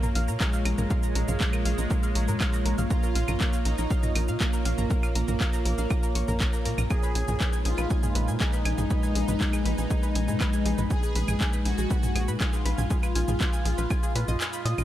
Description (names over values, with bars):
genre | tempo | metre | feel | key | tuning
melodic techno | 120 BPM | 4/4 | straight | Bb phrygian | A4 = 438 Hz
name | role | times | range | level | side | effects
soft supersaw | melody | 0.0-14.8 s | Ab3 to Ab4 | -33 LUFS | right 1 dB | wide subtle chorus, sidechain pumping, tape echo
deep dark ambient pad | sustained chords | 0.0-14.8 s | Ab3 to Db5 | -33 LUFS | left 1 dB | chorus, built-in reverb, sidechain pumping
analog pluck | arpeggios | 0.0-14.8 s | Ab4 to Bb6 | -37 LUFS | equal | chorus, sidechain pumping, diffuse ambient delay
analog drone | drone | 0.6-14.8 s | Bb2 | -42 LUFS | left 1 dB | none
punchy analog drum machine | drums | 0.0-14.8 s | claves, handclaps, hi-hat, shaker, toms | -32 LUFS | equal | none
tight sequencer bass | bass | 0.2-14.8 s | Bb1 to Bb2 | -27 LUFS | equal | sidechain pumping
electronic kick drum | drums | 0.4-14.0 s | none | -27 LUFS | equal | none
room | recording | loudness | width
light reverb, digital ambience | none | -23 LUFS | side -13 dB against mid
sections
0.0-14.8 A section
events
kick drops out 14.4-14.8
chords
0.0 Bbm; 6.9 Abm/Bb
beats
0.41 | 0.91 1.41 1.91 2.40 | 2.90 3.40 3.90 4.41 | 4.91 5.41 5.91 6.41 | 6.91 7.41 7.91 8.40 | 8.90 9.40 9.90 10.40 | 10.90 11.40 11.90 12.40 | 12.90 13.40 13.90 14.40